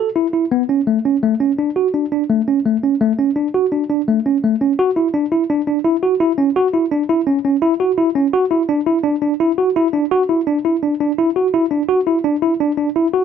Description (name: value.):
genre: progressive instrumental, progressive.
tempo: 169 BPM.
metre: 5/4.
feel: straight.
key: unclear.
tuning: A4 = 440 Hz.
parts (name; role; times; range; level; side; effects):
bright tine electric piano; solo; 0.0-13.2 s; A3 to F#4; -14 LUFS; equal; medium stereo tremolo.
room: moderate studio reverb, RT60 0.8 s.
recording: none.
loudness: -14 LUFS.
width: side -7 dB against mid.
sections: 0.0-4.8 A section; 4.8-13.2 B section.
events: none.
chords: none.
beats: 0.15 0.51 0.86 | 1.22 1.58 1.94 2.29 2.65 | 3.00 3.36 3.72 4.07 4.43 | 4.79 5.14 5.50 5.85 6.21 | 6.56 6.92 7.27 7.63 7.98 | 8.34 8.69 9.05 9.40 9.76 | 10.11 10.47 10.82 11.18 11.53 | 11.89 12.24 12.60 12.96.